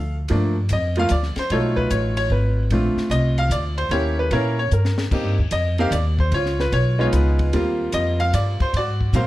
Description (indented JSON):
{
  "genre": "jazz piano trio",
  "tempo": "149 BPM",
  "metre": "3/4",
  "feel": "swing 67% on 8ths",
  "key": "G minor",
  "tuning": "A4 = 440 Hz",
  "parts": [
    { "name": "bright upright piano", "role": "melody", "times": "0.0-9.3 s", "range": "F3 to F5", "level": "-22 LUFS", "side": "equal", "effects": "plate reverb" },
    { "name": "upright bass", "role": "bass", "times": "0.0-9.3 s", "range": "Ab1 to Bb2", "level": "-20 LUFS", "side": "equal", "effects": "none" },
    { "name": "compact cocktail drum kit", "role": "drums", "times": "0.3-9.3 s", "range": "crash cymbal, hi-hat, kick drum, ride cymbal, snare drum", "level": "-30 LUFS", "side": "left 2 dB", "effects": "none" }
  ],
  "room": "light reverb",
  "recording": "none",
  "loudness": "-18 LUFS",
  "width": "side -16 dB against mid",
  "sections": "0.3-9.3 A section",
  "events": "drum fill 4.7-5.1",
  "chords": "0.3 Gm9; 1.5 B7#11; 2.7 Bbmaj9; 3.9 Eb7b9; 5.1 Abmaj9 (rootless); 6.3 C#9; 7.5 Eb69; 8.7 Ab13",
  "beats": "| 0.29 0.70 1.10 | 1.50 1.90 2.30 | 2.71 3.11 3.51 | 3.91 4.31 4.72 | 5.12 5.52 5.92 | 6.32 6.73 7.13 | 7.53 7.93 8.33 | 8.73 9.14"
}